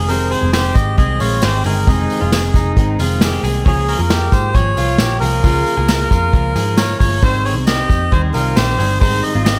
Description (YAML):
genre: jangly indie pop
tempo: 134 BPM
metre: 4/4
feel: straight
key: unclear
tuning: A4 = 436 Hz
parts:
  - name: melodica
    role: melody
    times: 0.0-9.6 s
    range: Ab4 to Eb5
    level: -22 LUFS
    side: equal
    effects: slapback echo, tape echo
  - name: fingerpicked steel-string acoustic guitar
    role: accompaniment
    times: 0.0-9.6 s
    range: F2 to Ab4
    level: -24 LUFS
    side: equal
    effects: slapback echo
  - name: electric guitar through a small old amp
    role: arpeggios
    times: 0.0-9.6 s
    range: Eb4 to Db5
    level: -27 LUFS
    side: equal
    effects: spring reverb, slapback echo, tape echo
  - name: vintage muted picked electric bass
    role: bass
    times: 0.0-9.6 s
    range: F1 to Ab2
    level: -20 LUFS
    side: equal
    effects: none
  - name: soft brush drum kit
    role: drums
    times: 0.1-9.6 s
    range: hi-hat, kick drum, snare drum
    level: -19 LUFS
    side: equal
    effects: none
  - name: tambourine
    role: percussion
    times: 0.1-9.6 s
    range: none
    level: -36 LUFS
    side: equal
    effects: none
room: light reverb, studio reverb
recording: faint mains hum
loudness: -15 LUFS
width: mono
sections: 0.0-9.6 A section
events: none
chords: 0.0 Fm7; 3.7 Db6; 7.2 Abmaj7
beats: | 0.09 0.53 0.98 1.43 | 1.87 2.32 2.76 3.21 | 3.66 4.10 4.55 4.99 | 5.44 5.89 6.33 6.78 | 7.22 7.67 8.12 8.56 | 9.01 9.46